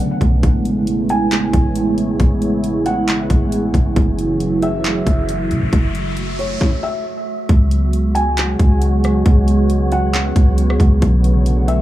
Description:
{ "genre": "hip hop, atmospheric cloud-rap", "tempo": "136 BPM", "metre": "4/4", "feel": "half-time", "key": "unclear", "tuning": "A4 = 437 Hz", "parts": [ { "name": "dark analog pad", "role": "sustained chords", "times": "0.0-11.8 s", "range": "C#3 to F#4", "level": "-19 LUFS", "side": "right 1 dB", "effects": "chorus, sidechain pumping" }, { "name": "wind-like tuned noise texture", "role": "texture", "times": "0.0-11.8 s", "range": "A3 to C#6", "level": "-28 LUFS", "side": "equal", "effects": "built-in reverb" }, { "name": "soft 808-style bass", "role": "bass", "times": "0.2-11.8 s", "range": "F#1 to C#3", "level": "-17 LUFS", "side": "equal", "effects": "none" }, { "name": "trap drum kit", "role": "drums", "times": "0.2-11.8 s", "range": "handclaps, hi-hat, kick drum, rim click, snare drum", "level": "-17 LUFS", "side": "equal", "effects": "overdrive" }, { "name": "felt-muted upright piano", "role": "melody", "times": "1.1-11.8 s", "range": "C#5 to G#5", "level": "-25 LUFS", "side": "equal", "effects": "low-pass filter, dub echo" }, { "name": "riser", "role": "sound effects", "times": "4.7-6.6 s", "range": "none", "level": "-32 LUFS", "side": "equal", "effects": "none" } ], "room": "little or no reverb", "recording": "echo-heavy mix", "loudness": "-14 LUFS", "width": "side -14 dB against mid", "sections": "0.0-7.5 A section; 7.5-11.8 B section", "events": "riser 4.7-7.5", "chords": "0.4 Amaj9; 4.0 F#m7; 7.5 C#7sus4; 11.0 Bm9", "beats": "| 0.43 0.87 1.31 1.76 | 2.20 2.64 3.08 3.52 | 3.96 4.40 4.84 5.29 | 5.73 6.17 6.61 7.05 | 7.49 7.93 8.37 8.81 | 9.26 9.70 10.14 10.58 | 11.02 11.46" }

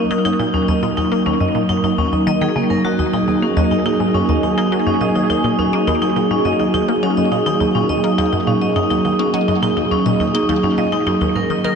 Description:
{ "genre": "ambient, sequencer-driven space music", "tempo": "104 BPM", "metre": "4/4", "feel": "straight", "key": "Eb minor", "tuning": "A4 = 441 Hz", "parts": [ { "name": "sweeping resonant pad", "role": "sustained chords", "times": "0.0-11.8 s", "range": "Gb3 to Bb4", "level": "-17 LUFS", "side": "right 2 dB", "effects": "chorus" }, { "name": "vibraphone with hard mallets", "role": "arpeggios", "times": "0.0-11.7 s", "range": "Bb3 to Eb5", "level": "-21 LUFS", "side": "left 2 dB", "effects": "auto-pan, tape echo" }, { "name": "resonant blip pluck", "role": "riff", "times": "0.0-11.7 s", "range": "Eb2 to Bb3", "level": "-21 LUFS", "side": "left 1 dB", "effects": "phaser, tape echo" } ], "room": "wet huge ambient reverb, RT60 7.5 s", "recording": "dark, warm production", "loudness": "-15 LUFS", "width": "side -6 dB against mid", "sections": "0.0-11.8 A section", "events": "none", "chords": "0.0 Ebm", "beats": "0.11 | 0.68 1.26 1.84 2.41 | 2.99 3.57 4.14 4.72 | 5.30 5.88 6.45 7.03 | 7.61 8.18 8.76 9.34 | 9.91 10.49 11.07 11.64" }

